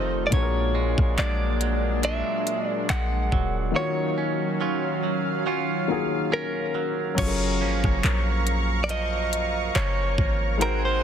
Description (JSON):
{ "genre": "contemporary R&B", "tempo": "70 BPM", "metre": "4/4", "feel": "swing 54% on 16ths", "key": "unclear", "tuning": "A4 = 441 Hz", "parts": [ { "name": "direct-recorded clean electric guitar", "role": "melody", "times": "0.0-11.0 s", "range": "Bb4 to F#5", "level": "-29 LUFS", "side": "equal", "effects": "tape echo" }, { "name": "warm baby grand piano", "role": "accompaniment", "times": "0.0-11.0 s", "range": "Bb2 to D5", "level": "-31 LUFS", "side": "left 5 dB", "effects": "none" }, { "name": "lush unison pad", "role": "sustained chords", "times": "0.0-11.0 s", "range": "Eb3 to Db6", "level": "-29 LUFS", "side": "equal", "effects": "chorus" }, { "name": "direct-recorded clean electric guitar", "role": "arpeggios", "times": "0.0-11.0 s", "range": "F2 to F4", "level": "-31 LUFS", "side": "right 8 dB", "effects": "tape echo" }, { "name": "warm 808-style bass", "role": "bass", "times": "0.0-11.0 s", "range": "Eb1 to Bb1", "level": "-26 LUFS", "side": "equal", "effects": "none" }, { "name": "trap drum kit", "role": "drums", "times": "0.3-10.8 s", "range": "crash cymbal, handclaps, hi-hat, kick drum, rim click", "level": "-27 LUFS", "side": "equal", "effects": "none" } ], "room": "light reverb", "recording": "dense, heavily limited modern master", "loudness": "-22 LUFS", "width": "side -8 dB against mid", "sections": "0.0-7.2 A section; 7.2-11.0 B section", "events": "silent gap 3.8-7.2", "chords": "0.3 Bb7alt; 3.8 Ebm9; 7.2 Gbmaj7" }